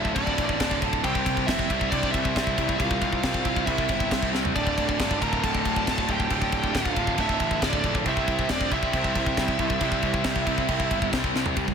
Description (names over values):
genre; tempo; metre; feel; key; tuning
heavy metal; 137 BPM; 4/4; straight; unclear; A4 = 440 Hz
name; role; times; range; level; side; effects
high-gain lead guitar; melody; 0.0-11.1 s; D5 to Bb5; -30 LUFS; right 1 dB; distortion, ping-pong delay
high-gain lead guitar; second line; 0.0-11.1 s; D4 to Bb4; -35 LUFS; right 3 dB; distortion
distorted electric guitar; riff; 0.0-11.7 s; D2 to C5; -32 LUFS; left 1 dB; overdrive
scooped high-gain guitar; riff; 0.0-11.7 s; D2 to C4; -31 LUFS; left 15 dB; distortion
tight distorted guitar; riff; 0.0-11.7 s; D2 to C4; -30 LUFS; right 12 dB; distortion
fuzz picked electric bass; bass; 0.0-11.7 s; D1 to C2; -31 LUFS; left 1 dB; overdrive
tight metal drum kit; drums; 0.0-11.7 s; crash cymbal, kick drum, ride cymbal, snare drum, toms; -28 LUFS; equal; none
room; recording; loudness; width
light reverb, studio ambience; none; -22 LUFS; side -7 dB against mid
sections
0.0-11.6 A section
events
drum fill 4.3, 11.3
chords
0.0 Dm; 1.0 C; 4.6 Dm; 8.1 C